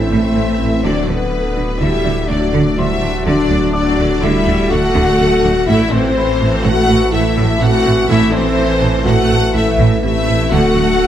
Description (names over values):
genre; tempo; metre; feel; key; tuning
cinematic, hybrid orchestral and electronic film score; 124 BPM; 5/4; straight; A dorian; A4 = 443 Hz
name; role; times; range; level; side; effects
rich studio violin section; melody; 0.0-11.1 s; B4 to F#5; -24 LUFS; left 3 dB; none
clear studio violin section; second line; 0.0-11.1 s; B4 to F#5; -23 LUFS; left 2 dB; none
rich studio viola section; accompaniment; 0.0-11.1 s; D3 to A3; -20 LUFS; right 1 dB; none
chorused pulse-width pad; sustained chords; 0.0-11.1 s; D3 to F#5; -25 LUFS; left 2 dB; none
clear trombone section; sustained chords; 0.0-11.1 s; D3 to F#4; -25 LUFS; right 2 dB; none
warm French horn section; sustained chords; 0.0-11.1 s; B3 to F#4; -18 LUFS; left 2 dB; none
thumb-piano-like synth pluck; arpeggios; 0.0-10.9 s; D3 to A4; -24 LUFS; right 3 dB; none
detuned saw bass; bass; 0.0-11.1 s; D1 to A1; -21 LUFS; left 1 dB; none
felt-muted upright piano; texture; 0.0-11.1 s; G4 to D6; -31 LUFS; left 2 dB; digital delay
rich symphonic cello section; bass; 0.1-10.8 s; A2 to D3; -22 LUFS; right 2 dB; none
warm studio double bass section; bass; 0.1-10.8 s; A1 to D2; -20 LUFS; right 3 dB; none
room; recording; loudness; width
moderate concert hall reverb, RT60 1.8 s; none; -12 LUFS; side -10 dB against mid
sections
0.0-11.1 A section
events
none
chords
0.0 Am; 0.8 D; 5.7 Am; 10.5 D